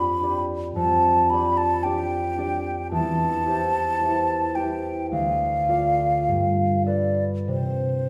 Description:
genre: classical, romantic duo for flute and harp.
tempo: 48-56 BPM.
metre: 4/4.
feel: rubato.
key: unclear.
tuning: A4 = 440 Hz.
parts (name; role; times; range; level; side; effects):
mellow hollow concert flute; melody; 0.0-8.1 s; C5 to B5; -25 LUFS; equal; none.
concert harp; accompaniment; 0.0-8.1 s; D2 to D5; -27 LUFS; equal; none.
room: wet recital hall reverb, RT60 1.4 s.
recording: heard from further back in the room.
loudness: -23 LUFS.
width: mono.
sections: 0.0-8.1 A section.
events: none.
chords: 0.0 G7/F; 2.9 C/E; 5.1 Dm; 6.3 G9; 7.5 N.C..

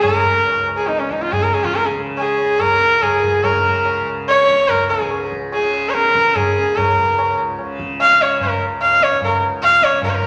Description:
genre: indian classical, Hindustani.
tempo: 144 BPM.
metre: 4/4.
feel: straight.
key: unclear.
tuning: A4 = 440 Hz.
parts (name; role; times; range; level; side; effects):
rich sarangi; melody; 0.0-10.3 s; Db4 to F5; -17 LUFS; equal; none.
tanpura; drone; 0.0-10.3 s; Db2 to Db3; -31 LUFS; equal; none.
tabla; percussion; 0.0-10.3 s; none; -28 LUFS; equal; none.
room: wet large studio reverb, RT60 1.2 s.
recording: none.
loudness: -16 LUFS.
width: mono.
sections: 0.0-10.0 A section.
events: speeding up 0.0-10.3.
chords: none.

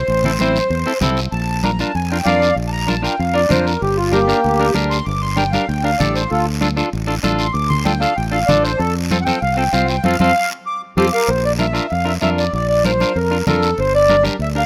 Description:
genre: latin, cumbia.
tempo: 193 BPM.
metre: 4/4.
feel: straight.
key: unclear.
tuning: A4 = 440 Hz.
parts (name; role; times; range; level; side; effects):
accordion; melody; 0.0-14.7 s; Bb3 to D6; -20 LUFS; equal; light tremolo tuning.
fingered electric bass; bass; 0.0-14.6 s; G1 to F2; -23 LUFS; equal; none.
guiro; percussion; 0.1-14.7 s; none; -30 LUFS; equal; none.
semi-hollow electric guitar; accompaniment; 0.2-14.6 s; C4 to C5; -24 LUFS; equal; none.
congas; percussion; 0.2-14.4 s; none; -26 LUFS; equal; none.
room: studio ambience.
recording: rough home demo mix.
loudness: -17 LUFS.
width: mono.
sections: 0.0-1.3 A section; 1.3-11.3 B section; 11.3-14.7 C section.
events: accordion solo 1.3-11.3; band accent 10.0-11.3; drum fill 10.4-11.3.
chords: 0.0 Am; 1.3 Bb; 3.8 Gm; 6.3 Dm; 8.8 F; 11.3 Bb; 13.8 Gm.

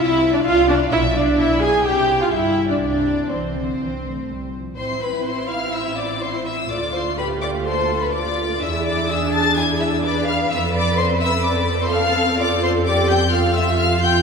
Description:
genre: quick classical-period movement for string orchestra.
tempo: 126 BPM.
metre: 4/4.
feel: straight.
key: C major, A minor from 4.8 s.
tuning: A4 = 439 Hz.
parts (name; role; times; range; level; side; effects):
warm studio violin section; melody; 0.0-14.2 s; C5 to A6; -25 LUFS; left 5 dB; none.
rich studio violin section; second line; 0.0-14.2 s; B4 to A5; -24 LUFS; left 2 dB; none.
rich studio viola section; accompaniment; 0.0-14.2 s; A3 to A4; -21 LUFS; right 1 dB; none.
dark studio cello section; bass; 0.0-14.2 s; G2 to B4; -26 LUFS; right 3 dB; none.
dark studio double bass section; bass; 0.0-14.2 s; G1 to F2; -25 LUFS; equal; none.
room: wet church reverb, RT60 2.7 s.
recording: recorded in a church or concert hall.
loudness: -17 LUFS.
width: side -5 dB against mid.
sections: 0.0-4.8 A section; 4.8-14.2 B section.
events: none.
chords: 0.0 Cadd9; 0.9 E7/B; 1.9 C5; 2.3 Em7/G; 2.8 C; 4.8 Am; 6.7 Dm; 8.6 E7; 10.5 F; 12.4 Fmaj13.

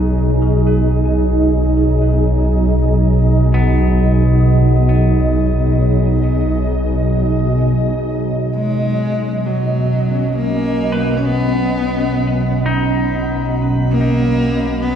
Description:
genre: ambient.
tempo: free time.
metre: none.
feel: none.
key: unclear.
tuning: A4 = 445 Hz.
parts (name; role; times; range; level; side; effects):
ethereal airy pad; sustained chords; 0.0-15.0 s; B2 to F#5; -15 LUFS; right 1 dB; ensemble chorus, built-in reverb.
semi-hollow electric guitar; arpeggios; 0.0-6.4, 10.9-15.0 s; B3 to B4; -29 LUFS; left 3 dB; ping-pong delay.
round analog bass; bass; 0.0-15.0 s; B1; -19 LUFS; equal; none.
rich cello; melody; 8.6-15.0 s; F#3 to C#4; -20 LUFS; equal; ping-pong delay.
drifting glass-harmonics texture; texture; 10.0-15.0 s; B5; -41 LUFS; equal; none.
room: wet concert hall reverb, RT60 2.3 s.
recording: dark, warm production, lossy compression artefacts.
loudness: -13 LUFS.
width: side -8 dB against mid.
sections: 0.0-8.6 A section; 8.6-15.0 B section.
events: fade-out on clean electric guitar 0.0-8.6; filter sweep on ambient pad 0.0-8.6; fade-in on analog synth bass 8.6-15.0.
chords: 0.0 G#m/B.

